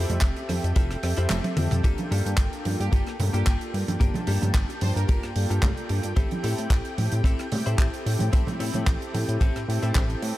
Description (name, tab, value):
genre	nu-disco, nu disco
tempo	111 BPM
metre	4/4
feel	swing 53% on 16ths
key	G dorian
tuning	A4 = 441 Hz
part	mellow synth brass	accompaniment	0.0-10.4 s	Bb3 to A5	-33 LUFS	equal	chorus, sidechain pumping, digital delay
part	lush unison pad	sustained chords	0.0-10.4 s	G4 to G5	-38 LUFS	left 1 dB	chorus, sidechain pumping
part	direct-recorded clean electric guitar	riff	0.0-10.3 s	Bb3 to C5	-36 LUFS	left 4 dB	lush chorus, digital delay
part	chorused synth bass	bass	0.0-10.3 s	F1 to A2	-26 LUFS	equal	tube saturation, sidechain pumping
part	tight funk drum kit	drums	0.1-10.3 s	handclaps, hi-hat, ride cymbal, rim click, toms	-33 LUFS	equal	none
part	congas, tube shaker and bongos	percussion	0.1-10.2 s	none	-33 LUFS	right 3 dB	none
part	kick drum	drums	0.2-10.1 s	none	-22 LUFS	equal	none
part	rich studio violin section	melody	2.8-5.2 s	G4 to C5	-38 LUFS	right 2 dB	digital delay
room	small room ambience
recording	dark, warm production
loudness	-22 LUFS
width	side -16 dB against mid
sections	0.0-10.4 A section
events	kick drops out 1.3-1.8; drum fill 1.3-1.8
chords	0.0 Fmaj9; 1.8 Gm9; 6.2 Am7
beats	0.22 0.76 1.30 | 1.84 2.38 2.93 3.47 | 4.01 4.55 5.09 5.63 | 6.17 6.71 7.25 7.79 | 8.33 8.87 9.41 9.95